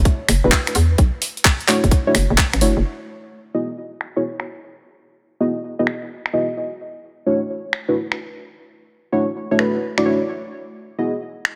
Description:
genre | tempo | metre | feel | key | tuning
UK garage, two-step garage | 129 BPM | 4/4 | swing 67% on 16ths | C# phrygian | A4 = 439 Hz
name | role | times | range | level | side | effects
hollow knocking FM bass | bass | 0.0-2.8 s | F#1 to E2 | -19 LUFS | equal | none
breakbeat sampler-style drum kit | drums | 0.1-11.6 s | finger snaps, handclaps, hi-hat | -21 LUFS | equal | low-pass filter on hats, studio reverb, low-pass filter on snare
electronic kick drum | drums | 0.1-2.5 s | none | -18 LUFS | equal | studio reverb
deep mellow chord stab | stabs | 0.4-11.1 s | A3 to D#5 | -24 LUFS | equal | chorus, delay
room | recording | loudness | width
light reverb | none | -20 LUFS | mono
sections
0.0-2.8 A section; 2.8-11.6 B section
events
none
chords
0.0 Bm11 (rootless); 2.8 C#m11 (rootless); 6.6 Bm11; 10.3 C#m11 (rootless)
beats
0.06 0.52 | 0.98 1.45 1.92 2.38 | 2.85 3.31 3.78 4.24 | 4.71 5.17 5.64 6.10 | 6.57 7.03 7.50 7.96 | 8.43 8.89 9.36 9.82 | 10.29 10.75 11.22

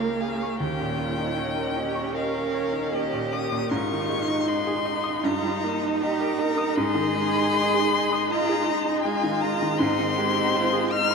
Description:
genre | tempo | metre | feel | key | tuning
classical, slow romantic movement for piano quartet | 78 BPM | 4/4 | rubato | Ab major | A4 = 435 Hz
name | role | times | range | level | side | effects
warm violin | melody | 0.0-11.1 s | Eb5 to F6 | -28 LUFS | left 7 dB | none
rich cello | second line | 0.0-11.1 s | Eb4 to Bb4 | -28 LUFS | right 4 dB | none
bright concert grand piano | accompaniment | 0.0-11.1 s | Db2 to Eb6 | -27 LUFS | equal | none
warm viola | accompaniment | 0.0-11.1 s | Bb3 to Eb4 | -30 LUFS | right 2 dB | none
room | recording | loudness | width
wet huge ambient reverb, RT60 8.0 s | in a vast, echoing space | -22 LUFS | side -5 dB against mid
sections
0.0-11.1 A section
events
none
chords
0.0 Bbm/Db; 0.6 Eb7; 3.7 Ab; 5.3 Eb/G; 6.8 Ab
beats
| 0.61 1.38 2.15 2.93 | 3.72 4.49 5.25 6.02 | 6.78 7.54 8.30 9.05 | 9.80 10.55

